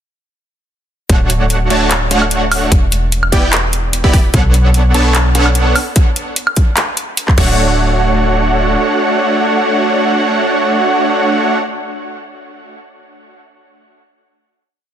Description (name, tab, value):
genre	future bass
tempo	148 BPM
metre	4/4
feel	half-time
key	D major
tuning	A4 = 440 Hz
part	supersaw stab	riff	1.1-11.6 s	A3 to B5	-14 LUFS	right 1 dB	cassette tape, sidechain pumping, tape echo
part	warm 808-style bass	bass	1.1-8.8 s	D1 to B1	-14 LUFS	equal	sidechain pumping
part	electronic kick drum	drums	1.1-7.5 s	none	-11 LUFS	equal	small room reverb
part	trap drum kit	drums	1.1-7.5 s	crash cymbal, handclaps, hi-hat, woodblock	-16 LUFS	equal	small room reverb
room	light reverb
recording	dense, heavily limited modern master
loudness	-11 LUFS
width	side -9 dB against mid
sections	1.1-7.6 drop; 7.6-10.8 final hit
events	drop 1.1-7.6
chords	1.1 Dmaj7; 2.7 Em7; 4.3 Bm9; 5.8 N.C.; 7.4 Dmaj7